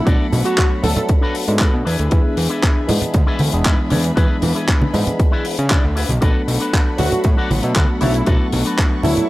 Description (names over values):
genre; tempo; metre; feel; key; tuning
nu-disco, nu disco; 117 BPM; 4/4; straight; B dorian; A4 = 442 Hz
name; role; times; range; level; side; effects
wide unison lead; melody; 0.0-1.0, 7.0-9.3 s; E4 to A4; -24 LUFS; right 1 dB; tape echo
barky tine electric piano; accompaniment; 0.0-9.3 s; E3 to A4; -23 LUFS; equal; phaser, sidechain pumping
warm studio violin section; sustained chords; 0.0-9.3 s; D4 to C#6; -31 LUFS; left 1 dB; sidechain pumping
electric guitar with an envelope filter; riff; 0.1-9.0 s; D4 to D5; -27 LUFS; left 2 dB; analog chorus
fat analog bass; bass; 0.1-9.1 s; E1 to C#3; -19 LUFS; equal; none
electronic kick drum; drums; 0.1-8.9 s; none; -16 LUFS; equal; small room reverb
tight funk drum kit; drums; 0.1-9.3 s; handclaps, hi-hat; -24 LUFS; left 2 dB; small room reverb
congas; percussion; 0.3-9.3 s; none; -22 LUFS; right 1 dB; none
room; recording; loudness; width
small room reverb; dry, gritty hardware recording; -14 LUFS; side -18 dB against mid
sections
0.0-9.3 A section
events
none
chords
0.0 Bm7; 1.9 E7; 6.2 Bm7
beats
| 0.07 0.58 1.09 1.60 | 2.12 2.63 3.14 3.65 | 4.17 4.68 5.19 5.71 | 6.22 6.73 7.25 7.76 | 8.27 8.78